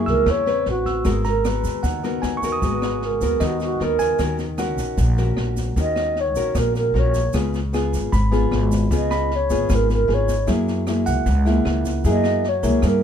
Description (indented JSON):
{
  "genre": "bossa nova",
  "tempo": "153 BPM",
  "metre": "4/4",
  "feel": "straight",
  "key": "G# minor",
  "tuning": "A4 = 440 Hz",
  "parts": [
    { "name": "mellow wooden-headed alto flute", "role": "melody", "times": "0.0-13.0 s", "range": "F#4 to D#5", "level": "-22 LUFS", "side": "right 2 dB", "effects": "none" },
    { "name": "bell-like tine electric piano", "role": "accompaniment", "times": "0.0-13.0 s", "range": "A#4 to E6", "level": "-30 LUFS", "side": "right 2 dB", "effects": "none" },
    { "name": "nylon-string guitar", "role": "accompaniment", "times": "0.0-13.0 s", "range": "G#2 to B4", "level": "-24 LUFS", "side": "left 3 dB", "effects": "none" },
    { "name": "upright bass", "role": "bass", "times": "0.0-13.0 s", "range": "G#1 to G2", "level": "-22 LUFS", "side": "equal", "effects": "none" },
    { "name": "open jazz drum kit", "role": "drums", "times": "0.1-12.9 s", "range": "kick drum, rim click, snare drum", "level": "-28 LUFS", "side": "equal", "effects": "none" },
    { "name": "tube shaker", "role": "percussion", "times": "1.0-13.0 s", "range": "none", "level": "-41 LUFS", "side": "right 5 dB", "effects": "none" }
  ],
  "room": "little or no reverb",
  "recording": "minimal, uncompressed stereo recording",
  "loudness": "-18 LUFS",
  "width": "side -8 dB against mid",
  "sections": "0.0-13.0 A section",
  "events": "alto flute solo 0.0-13.0",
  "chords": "0.0 F#9; 0.7 Amadd9; 1.1 G#m9; 4.2 D#m7; 7.3 C#7; 10.5 F#9"
}